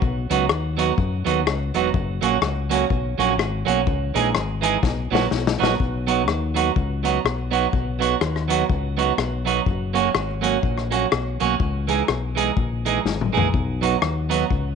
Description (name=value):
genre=ska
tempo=124 BPM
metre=4/4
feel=swing 59% on 8ths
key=B major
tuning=A4 = 440 Hz
part: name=fingered electric bass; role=bass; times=0.0-14.8 s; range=F#1 to F#2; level=-25 LUFS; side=left 2 dB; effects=none
part: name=vintage drum kit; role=drums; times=0.0-14.6 s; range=hi-hat, kick drum, rim click, snare drum, toms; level=-24 LUFS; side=left 6 dB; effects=vintage 12-bit sampler grit
part: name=clean electric guitar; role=accompaniment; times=0.3-14.4 s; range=E3 to G#4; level=-22 LUFS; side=right 11 dB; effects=spring reverb
room=light reverb, studio reverb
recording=1960s-style stereo with parts hard left and right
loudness=-19 LUFS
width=side -6 dB against mid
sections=0.0-5.8 A section; 5.8-14.8 B section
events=drum fill 4.8-5.8, 13.1-13.5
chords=0.0 B; 1.9 F#; 3.9 C#madd9; 4.8 B; 9.7 F#; 11.6 C#madd9; 13.5 B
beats=| 0.02 0.50 0.98 1.47 | 1.95 2.43 2.91 3.39 | 3.87 4.35 4.84 5.32 | 5.80 6.28 6.77 7.25 | 7.73 8.22 8.70 9.18 | 9.67 10.15 10.63 11.12 | 11.60 12.09 12.57 13.05 | 13.54 14.02 14.51